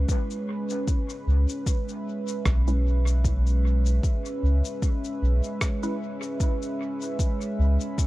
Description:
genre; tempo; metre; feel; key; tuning
ambient dub; 76 BPM; 4/4; swing 55% on 16ths; C# minor; A4 = 440 Hz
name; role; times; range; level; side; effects
warm analog pad; sustained chords; 0.0-8.1 s; G#3 to E5; -31 LUFS; right 1 dB; chorus
soft dub sub bass; bass; 0.0-7.8 s; B1 to C#2; -21 LUFS; equal; tube saturation
electronic cabasa and rim click; drums; 0.1-8.1 s; none; -36 LUFS; left 2 dB; dub echo
electronic kick drum; drums; 0.1-8.1 s; none; -25 LUFS; equal; none
filtered dub chord stab; stabs; 2.7-6.0 s; G#3 to B4; -38 LUFS; equal; phaser, dub echo
room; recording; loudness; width
little or no reverb; dark, warm production; -23 LUFS; side -17 dB against mid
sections
0.1-8.1 A section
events
none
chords
0.1 C#m7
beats
| 0.09 0.88 1.67 2.45 | 3.24 4.03 4.82 5.61 | 6.40 7.19 7.98

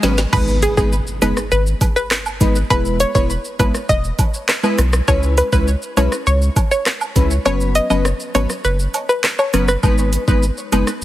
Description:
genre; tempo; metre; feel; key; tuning
dancehall; 101 BPM; 4/4; straight; G# minor; A4 = 441 Hz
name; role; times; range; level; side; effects
wavetable chord stab; accompaniment; 0.0-10.9 s; F#3 to B4; -20 LUFS; left 1 dB; sidechain pumping
saturated sub bass; bass; 0.0-11.0 s; E1 to C#2; -18 LUFS; equal; none
afro-pop drum kit; drums; 0.0-11.0 s; crash cymbal, handclaps, hi-hat, kick drum, rim click, shaker, snare drum; -19 LUFS; equal; overdrive
cabasa and woodblock; percussion; 0.0-10.9 s; none; -26 LUFS; right 5 dB; none
swell and impact; sound effects; 0.0-2.7 s; none; -26 LUFS; equal; none
analog pluck; melody; 0.3-9.8 s; G#4 to D#5; -20 LUFS; equal; chorus, tape echo
room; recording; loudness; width
light reverb; heavily compressed radio sound, multiband compression; -14 LUFS; side -14 dB against mid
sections
0.3-11.0 A section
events
drum fill 0.0-0.3; swell 0.0-0.3; impact 0.3-2.7; kick muted 7.5-9.8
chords
0.3 G#m; 2.7 E; 5.1 C#m7; 7.5 F#sus4; 9.8 G#m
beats
| 0.33 0.92 1.52 2.11 | 2.70 3.30 3.89 4.49 | 5.08 5.67 6.27 6.86 | 7.46 8.05 8.64 9.24 | 9.83 10.43 11.02

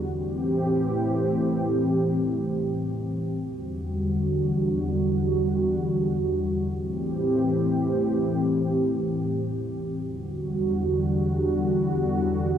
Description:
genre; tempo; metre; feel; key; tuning
hip hop; free time; none; none; E minor; A4 = 442 Hz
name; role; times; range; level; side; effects
dark analog pad; solo; 0.0-12.6 s; E2 to G4; -23 LUFS; equal; chorus
room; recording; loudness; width
moderate huge ambient reverb, RT60 7.7 s; none; -23 LUFS; side -9 dB against mid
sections
0.0-10.0 A section; 10.0-12.6 B section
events
none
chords
0.1 Am7; 3.4 Em9; 6.7 Am7; 10.0 Em9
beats
free time

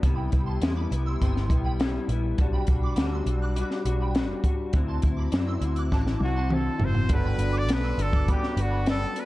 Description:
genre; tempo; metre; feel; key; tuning
indie pop, bedroom pop; 102 BPM; 4/4; straight; G major; A4 = 438 Hz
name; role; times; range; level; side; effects
electric guitar through a small old amp; accompaniment; 0.0-9.3 s; G2 to F#4; -31 LUFS; left 3 dB; ensemble chorus, warbly pitch drift
vintage muted picked electric bass; bass; 0.0-9.0 s; F#1 to F#2; -27 LUFS; equal; none
compact cocktail drum kit; drums; 0.0-9.3 s; hi-hat, kick drum, snare drum, toms; -26 LUFS; equal; vintage 12-bit sampler grit
shimmering bell with halo; second line; 0.1-8.9 s; G5 to F#6; -39 LUFS; right 4 dB; ensemble chorus, phaser, analog delay
brilliant trumpet; melody; 6.2-9.3 s; F#4 to D5; -31 LUFS; equal; lush chorus
barky tine electric piano; accompaniment; 7.1-9.3 s; B3 to A4; -34 LUFS; right 5 dB; cassette tape
room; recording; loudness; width
light reverb, small room ambience; dark, warm production; -23 LUFS; side -17 dB against mid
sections
0.0-7.1 A section; 7.1-9.3 B section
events
drum fill 5.9-7.1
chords
0.0 Cmaj7; 2.4 Gmaj7/B; 4.7 D9; 7.1 Gmaj7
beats
| 0.03 0.62 1.21 1.80 | 2.39 2.98 3.56 4.15 | 4.74 5.33 5.92 6.51 | 7.10 7.68 8.27 8.86

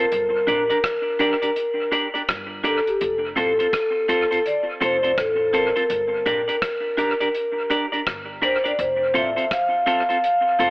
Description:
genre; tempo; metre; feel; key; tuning
roots reggae; 83 BPM; 4/4; swing 62% on 16ths; unclear; A4 = 441 Hz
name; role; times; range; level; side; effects
vibraphone with soft mallets; melody; 0.0-10.7 s; G4 to F5; -21 LUFS; equal; tape echo
clean electric guitar; accompaniment; 0.0-10.7 s; C4 to D5; -24 LUFS; right 1 dB; wide subtle chorus, tape echo
upright bass; bass; 0.1-10.7 s; F1 to Bb1; -37 LUFS; equal; none
damped 70s drum kit; drums; 0.1-10.7 s; hi-hat, kick drum, rim click; -29 LUFS; equal; dub echo
room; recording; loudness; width
moderate plate reverb, RT60 1.8 s, studio reverb; echo-heavy mix, telephone sound; -19 LUFS; side -23 dB against mid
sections
0.0-10.7 A section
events
none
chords
0.1 Gm; 3.0 F; 5.9 Gm; 8.8 F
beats
| 0.11 0.84 1.56 2.28 | 3.00 3.73 4.45 5.17 | 5.89 6.62 7.34 8.06 | 8.79 9.51 10.23

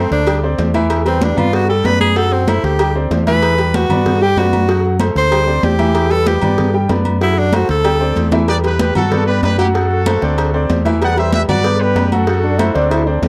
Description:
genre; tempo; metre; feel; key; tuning
latin, salsa; 190 BPM; 4/4; straight; E minor; A4 = 442 Hz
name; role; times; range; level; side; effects
bright tenor saxophone; melody; 0.0-8.4 s; C4 to C5; -19 LUFS; equal; slapback echo
bright grand piano; accompaniment; 0.0-13.3 s; E3 to G5; -21 LUFS; equal; none
fingered electric bass; bass; 0.0-13.3 s; D2 to G2; -20 LUFS; equal; none
congas; percussion; 0.1-13.3 s; none; -23 LUFS; equal; none
cowbell; percussion; 0.1-13.3 s; none; -27 LUFS; equal; none
agogo bells and timbales; percussion; 0.3-13.3 s; none; -27 LUFS; equal; none
brilliant horn section; melody; 8.5-13.0 s; E4 to F#5; -23 LUFS; equal; none
mellow trombone section; second line; 12.4-13.3 s; C4 to E4; -21 LUFS; equal; none
room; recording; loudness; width
light reverb; dry, close 1970s-style studio recording; -15 LUFS; mono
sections
0.0-8.5 A section; 8.5-13.3 B section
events
tenor saxophone solo 0.0-8.5; drum fill 7.5-8.5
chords
0.3 D9sus4; 0.9 Em7; 1.5 Gmaj7; 2.2 F#dim; 2.8 D9sus4; 3.4 Em9; 4.1 Gmaj7; 4.7 F#dim; 5.3 D9sus4; 6.0 Em7; 6.6 Gmaj7; 7.2 F#dim; 7.8 D9sus4; 8.5 Emadd9; 9.1 Gmaj7; 9.7 F#dim; 10.4 Dsus2; 11.0 Em9; 11.6 Gmaj7; 12.3 F#dim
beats
0.26 0.58 | 0.90 1.21 1.53 1.84 | 2.16 2.48 2.79 3.11 | 3.42 3.74 4.05 4.37 | 4.69 5.00 5.32 5.63 | 5.95 6.27 6.58 6.90 | 7.21 7.53 7.85 8.16 | 8.48 8.79 9.11 9.43 | 9.74 10.06 10.38 10.69 | 11.01 11.33 11.64 11.96 | 12.28 12.59 12.91 13.23

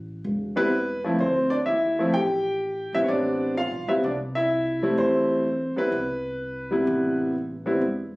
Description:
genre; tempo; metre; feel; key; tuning
jazz piano trio; 126 BPM; 4/4; swing 66% on 8ths; A minor; A4 = 439 Hz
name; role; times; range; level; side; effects
upright bass; bass; 0.0-8.2 s; E1 to E2; -34 LUFS; equal; none
warm concert grand piano; melody; 0.6-7.8 s; C3 to G5; -22 LUFS; equal; none
room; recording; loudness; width
moderate studio reverb, RT60 0.6 s; recorded on a phone in the room, club reverb, compression; -22 LUFS; side -22 dB against mid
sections
0.0-8.2 A section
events
none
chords
0.0 Amadd9; 1.2 D7sus2; 3.1 Am9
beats
0.24 0.71 | 1.19 1.66 2.13 2.61 | 3.08 3.56 4.03 4.51 | 4.98 5.46 5.93 6.40 | 6.88 7.35 7.82

